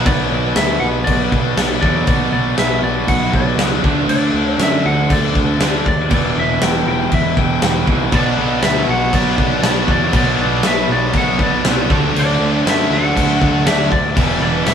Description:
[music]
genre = hard rock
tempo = 119 BPM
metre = 4/4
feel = straight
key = unclear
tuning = A4 = 437 Hz
[part]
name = heavy high-gain guitar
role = riff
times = 0.0-14.7 s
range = E2 to D4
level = -23 LUFS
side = left 7 dB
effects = distortion
[part]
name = high-gain distorted guitar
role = riff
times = 0.0-0.1, 8.1-14.7 s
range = B2 to E4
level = -22 LUFS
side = equal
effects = distortion
[part]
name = overdriven semi-hollow guitar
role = riff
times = 0.0-14.7 s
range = E2 to D4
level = -20 LUFS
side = right 6 dB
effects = none
[part]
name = fuzz picked electric bass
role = bass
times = 0.0-14.7 s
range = E1 to F#2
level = -21 LUFS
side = equal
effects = overdrive
[part]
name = lightly driven lead guitar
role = melody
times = 0.1-14.7 s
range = D5 to G5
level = -21 LUFS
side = left 1 dB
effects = tape echo
[part]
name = big rock drum kit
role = drums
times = 0.1-14.7 s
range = crash cymbal, kick drum, snare drum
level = -18 LUFS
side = equal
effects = none
[sound]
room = moderate stone room reverb, RT60 1.3 s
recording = band playing live in one room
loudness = -13 LUFS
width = side -8 dB against mid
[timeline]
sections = 0.1-14.7 A section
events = none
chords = 0.1 Bm; 3.8 D5; 6.1 Em; 8.1 Bm; 11.9 D; 14.2 Em

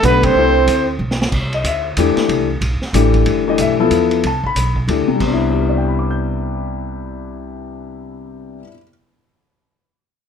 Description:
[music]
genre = modal jazz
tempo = 186 BPM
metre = 3/4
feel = swing 62% on 8ths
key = C major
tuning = A4 = 441 Hz
[part]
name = breathy trumpet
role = melody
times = 0.0-1.0 s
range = B4 to C5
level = -16 LUFS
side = right 1 dB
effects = none
[part]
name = growling trombone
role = second line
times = 0.0-1.0 s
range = B3 to C4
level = -18 LUFS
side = right 7 dB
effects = none
[part]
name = warm concert grand piano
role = accompaniment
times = 0.0-8.9 s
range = C3 to G6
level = -17 LUFS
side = left 6 dB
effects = none
[part]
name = upright bass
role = bass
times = 0.0-8.6 s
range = G1 to E2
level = -20 LUFS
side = right 1 dB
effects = none
[part]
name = vintage drum kit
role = drums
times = 0.0-5.3 s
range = crash cymbal, hi-hat, kick drum, ride cymbal, snare drum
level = -24 LUFS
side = right 1 dB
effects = none
[sound]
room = moderate studio reverb, RT60 0.5 s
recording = none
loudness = -14 LUFS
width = side -7 dB against mid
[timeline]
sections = 0.0-1.3 A section; 1.3-5.2 B section; 5.2-7.1 C section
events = band accent 0.2; drum fill 1.0-1.3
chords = 0.0 Cmaj9

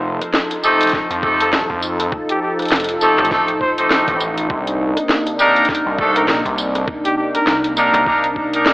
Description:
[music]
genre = glitch hop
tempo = 101 BPM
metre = 4/4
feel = swing 58% on 16ths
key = C dorian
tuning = A4 = 439 Hz
[part]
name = warm analog pad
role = sustained chords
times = 0.0-8.7 s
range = C3 to A4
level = -21 LUFS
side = equal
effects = chorus, sidechain pumping
[part]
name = gritty driven synth bass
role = bass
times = 0.0-6.9 s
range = F1 to F2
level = -22 LUFS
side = equal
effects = none
[part]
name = drum and bass drum kit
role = drums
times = 0.2-8.7 s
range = hi-hat, rim click, snare drum, tambourine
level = -20 LUFS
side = equal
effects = none
[part]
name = bright horn section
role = stabs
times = 0.6-8.7 s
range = A3 to Bb4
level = -16 LUFS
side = equal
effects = sidechain pumping, diffuse ambient delay
[part]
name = electronic kick drum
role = drums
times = 0.9-8.5 s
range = none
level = -28 LUFS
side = equal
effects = none
[part]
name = warm trumpet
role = melody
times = 1.4-7.6 s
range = G4 to C5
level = -23 LUFS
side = equal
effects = diffuse ambient delay
[part]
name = slap-like FM bass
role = bass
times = 1.5-8.7 s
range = Eb1 to C2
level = -23 LUFS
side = equal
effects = none
[sound]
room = wet plate reverb, RT60 2.1 s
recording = dreamy mix soaked in reverb, AM radio sound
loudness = -14 LUFS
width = side -21 dB against mid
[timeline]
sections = 0.0-8.7 A section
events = none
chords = 0.0 F7; 4.5 Cm9

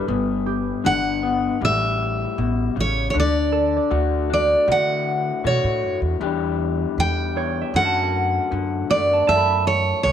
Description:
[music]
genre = acoustic folk-pop ballad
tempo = 78 BPM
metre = 4/4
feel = straight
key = unclear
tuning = A4 = 440 Hz
[part]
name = electric guitar through a small old amp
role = accompaniment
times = 0.0-10.1 s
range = E2 to G4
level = -24 LUFS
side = left 9 dB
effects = none
[part]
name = concert harp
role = arpeggios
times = 0.0-10.1 s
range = F#4 to B5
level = -27 LUFS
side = right 11 dB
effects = none
[part]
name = upright bass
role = bass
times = 0.1-10.1 s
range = G1 to D3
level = -25 LUFS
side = right 1 dB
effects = none
[part]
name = picked steel-string acoustic guitar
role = melody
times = 0.9-10.1 s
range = C#5 to G5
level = -20 LUFS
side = right 1 dB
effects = none
[sound]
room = light reverb, small room ambience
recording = 1960s-style stereo with parts hard left and right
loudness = -18 LUFS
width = side -9 dB against mid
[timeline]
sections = 0.0-10.1 A section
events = none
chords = 0.1 G; 1.6 A7; 3.1 D; 6.2 Em7; 7.8 Dmaj7/F#; 9.3 F#m

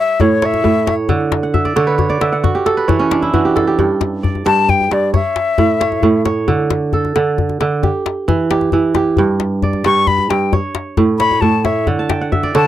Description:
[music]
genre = west african traditional, West African string and xylophone music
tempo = 89 BPM (dotted quarters)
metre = 12/8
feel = straight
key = G lydian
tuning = A4 = 440 Hz
[part]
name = jazz flute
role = melody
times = 0.0-12.7 s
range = C#5 to C#6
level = -15 LUFS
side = left 5 dB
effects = none
[part]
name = kora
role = arpeggios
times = 0.0-12.7 s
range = G2 to A5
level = -15 LUFS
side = right 3 dB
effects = none
[part]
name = djembe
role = percussion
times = 0.2-12.7 s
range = none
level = -19 LUFS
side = left 4 dB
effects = none
[sound]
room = light reverb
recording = dry, close 1970s-style studio recording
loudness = -13 LUFS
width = side -12 dB against mid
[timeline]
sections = 0.0-12.7 A section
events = kora fill 1.4-3.8, 12.0-12.7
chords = 0.0 A; 1.1 Dmaj13; 2.4 N.C.; 3.8 G5; 5.1 A; 6.5 D5; 7.8 Em; 9.2 G5; 10.5 A; 11.9 Dmaj9

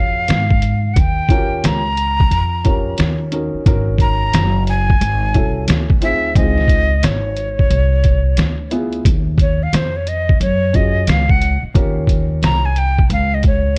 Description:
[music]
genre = hip hop, jazz-hop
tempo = 89 BPM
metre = 4/4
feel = swing 63% on 16ths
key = Eb dorian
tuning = A4 = 440 Hz
[part]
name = breathy mellow jazz flute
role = melody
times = 0.0-13.8 s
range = C5 to Bb5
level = -22 LUFS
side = equal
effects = none
[part]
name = dark upright piano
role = accompaniment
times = 0.0-12.7 s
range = B3 to Bb4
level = -26 LUFS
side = equal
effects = none
[part]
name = upright bass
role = bass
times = 0.0-13.7 s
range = Gb1 to Ab2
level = -20 LUFS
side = equal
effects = none
[part]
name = trip hop sampler-style drum kit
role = drums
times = 0.3-13.6 s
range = hi-hat, kick drum, snare drum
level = -18 LUFS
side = equal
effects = none
[sound]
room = small room ambience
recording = worn, warbling old tape, cassette tape, warbly pitch drift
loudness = -16 LUFS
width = mono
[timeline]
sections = 0.0-9.1 A section; 9.1-13.8 B section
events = flute solo 9.1-13.8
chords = 0.0 Ebm11 (rootless); 1.0 Eb7; 3.0 Eb9; 3.7 Ab9sus4; 5.7 Dmaj9; 6.4 Dbmaj9; 8.4 Ddim7; 9.1 Ebm9; 11.8 Eb7

